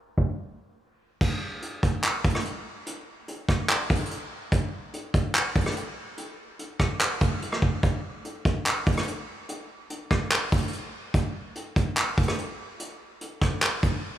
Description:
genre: hip hop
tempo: 145 BPM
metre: 4/4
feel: half-time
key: none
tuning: none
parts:
  - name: vintage brush drum kit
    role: drums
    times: 0.2-13.9 s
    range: crash cymbal, handclaps, hi-hat, kick drum, rim click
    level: -25 LUFS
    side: equal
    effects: none
room: light reverb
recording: low-pass filter, studio reverb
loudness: -24 LUFS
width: side -12 dB against mid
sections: 0.0-1.2 A section; 1.2-14.2 B section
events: filter sweep 0.0-1.2; break 0.4-1.2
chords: none

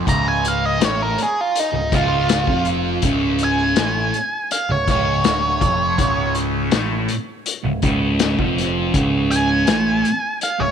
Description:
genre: psychedelic rock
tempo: 81 BPM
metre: 4/4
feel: straight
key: unclear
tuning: A4 = 442 Hz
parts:
  - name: thick fuzz guitar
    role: riff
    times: 0.0-10.7 s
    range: C#2 to A3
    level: -20 LUFS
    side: right 1 dB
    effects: distortion, phaser
  - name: growling picked electric bass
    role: bass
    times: 0.0-10.7 s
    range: C#1 to A1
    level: -25 LUFS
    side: right 1 dB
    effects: overdrive
  - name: octave-fuzz lead guitar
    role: melody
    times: 0.1-10.7 s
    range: D#4 to A#5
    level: -20 LUFS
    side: right 1 dB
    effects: distortion, tape echo
  - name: vintage drum kit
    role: drums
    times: 0.1-10.6 s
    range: hi-hat, kick drum, snare drum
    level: -22 LUFS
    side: left 4 dB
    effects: none
room: light reverb, small room ambience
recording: 1960s-style stereo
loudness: -16 LUFS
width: side -8 dB against mid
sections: 0.0-10.7 A section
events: lead electric guitar solo 0.0-10.7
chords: 0.0 C#

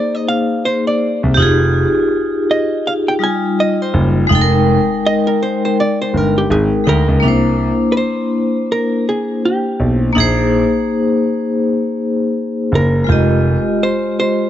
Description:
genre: hip hop, jazz-hop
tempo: 82 BPM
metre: 4/4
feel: swing 60% on 16ths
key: F dorian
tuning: A4 = 440 Hz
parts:
  - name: hollow-body jazz guitar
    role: melody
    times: 0.0-14.5 s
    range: G4 to Ab5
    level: -19 LUFS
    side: right 2 dB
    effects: none
  - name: vibraphone with hard mallets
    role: accompaniment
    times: 0.0-14.5 s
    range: G3 to G5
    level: -15 LUFS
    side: left 2 dB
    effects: none
  - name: warm grand piano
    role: bass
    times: 1.2-13.5 s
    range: F1 to D2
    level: -14 LUFS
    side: equal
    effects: none
room: light reverb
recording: dark, warm production, nothing above 7.8 kHz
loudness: -13 LUFS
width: side -11 dB against mid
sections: 0.0-7.2 A section; 7.2-14.5 B section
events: hollow-body jazz guitar solo 0.0-7.2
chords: 0.0 Bb9sus4; 1.4 Fm9; 4.3 Fm11; 7.2 C9; 10.2 Bb9sus4; 13.1 Fm9

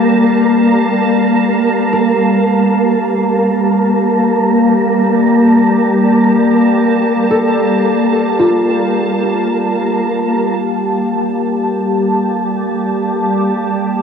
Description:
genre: ambient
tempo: free time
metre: none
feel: none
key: G minor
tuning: A4 = 440 Hz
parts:
  - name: evolving wavetable pad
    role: sustained chords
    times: 0.0-14.0 s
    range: G3 to A5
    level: -13 LUFS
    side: equal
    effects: ensemble chorus, built-in reverb, cassette tape, plate reverb
  - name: concert harp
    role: arpeggios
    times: 0.0-11.1 s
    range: F4 to G5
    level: -19 LUFS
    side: left 1 dB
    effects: cassette tape, analog delay
  - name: wind-like tuned noise texture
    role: texture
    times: 0.0-14.0 s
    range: Bb3 to A5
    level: -16 LUFS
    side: left 1 dB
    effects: built-in reverb, cassette tape, plate reverb
room: wet studio reverb, RT60 0.5 s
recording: home recording on cassette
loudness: -11 LUFS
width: side -7 dB against mid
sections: 0.0-10.6 A section; 10.6-14.0 B section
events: fade-in on harp 0.0-10.6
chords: 0.0 Gm7

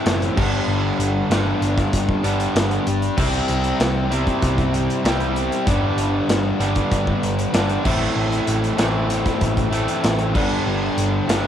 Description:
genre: quiet-loud alternative rock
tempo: 96 BPM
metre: 4/4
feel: straight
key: unclear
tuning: A4 = 438 Hz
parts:
  - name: high-gain distorted guitar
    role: riff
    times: 0.0-11.5 s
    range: G2 to E4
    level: -30 LUFS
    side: equal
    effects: distortion, cassette tape
  - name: overdriven electric guitar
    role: riff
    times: 0.0-11.5 s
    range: G2 to E4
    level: -23 LUFS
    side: left 8 dB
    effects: cassette tape
  - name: overdriven semi-hollow guitar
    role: riff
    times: 0.0-11.5 s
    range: G2 to C4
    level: -25 LUFS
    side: right 10 dB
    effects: cassette tape
  - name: hollow-body short-scale picked electric bass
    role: bass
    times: 0.1-11.5 s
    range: F#1 to C2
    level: -24 LUFS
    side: equal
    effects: none
  - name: big rock drum kit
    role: drums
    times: 0.1-11.4 s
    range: crash cymbal, hi-hat, kick drum, snare drum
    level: -23 LUFS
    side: equal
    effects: cassette tape
room: light reverb, small room ambience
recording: home recording on cassette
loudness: -18 LUFS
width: side -9 dB against mid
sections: 0.0-11.5 A section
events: none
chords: 0.4 G; 3.2 C; 5.7 G; 7.9 Am; 10.3 G

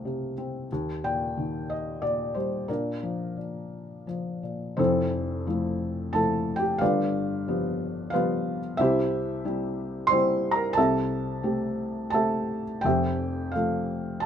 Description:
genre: classical, lyrical solo piano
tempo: 83-93 BPM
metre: 3/4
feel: rubato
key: Bb major, F major from 4.8 s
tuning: A4 = 440 Hz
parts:
  - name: felt-muted upright piano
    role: solo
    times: 0.0-14.3 s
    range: F1 to C6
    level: -25 LUFS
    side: equal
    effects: none
room: light reverb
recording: none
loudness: -25 LUFS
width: side -8 dB against mid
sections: 0.0-4.8 A section; 4.8-14.3 B section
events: none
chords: 0.0 F; 0.7 Eb; 2.7 Bb; 4.8 Fmaj7; 6.8 G7; 8.8 C; 10.8 Am7/C; 12.8 Fmaj7

